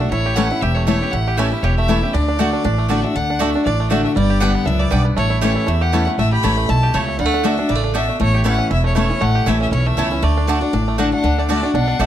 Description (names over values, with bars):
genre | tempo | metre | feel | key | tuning
bluegrass | 237 BPM | 4/4 | swing 55% on 8ths | D major | A4 = 441 Hz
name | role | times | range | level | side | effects
clear fiddle | melody | 0.0-12.1 s | C#5 to B5 | -23 LUFS | left 3 dB | none
picked steel-string acoustic guitar | accompaniment | 0.0-12.1 s | E2 to G4 | -20 LUFS | left 3 dB | none
bluegrass banjo | arpeggios | 0.0-12.1 s | D3 to G4 | -24 LUFS | right 7 dB | slapback echo
upright bass | bass | 0.0-12.1 s | E1 to E2 | -19 LUFS | equal | none
mandolin | stabs | 0.4-12.1 s | A3 to A5 | -24 LUFS | right 5 dB | none
rich fiddle | second line | 11.0-12.1 s | A3 to D4 | -26 LUFS | left 5 dB | none
room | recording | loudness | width
light reverb | close, detailed microphones | -15 LUFS | side -11 dB against mid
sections
0.0-3.1 A section; 3.1-11.2 A section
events
none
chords
0.1 A; 2.1 D; 4.2 G; 5.2 A; 7.2 D; 8.2 A; 10.2 D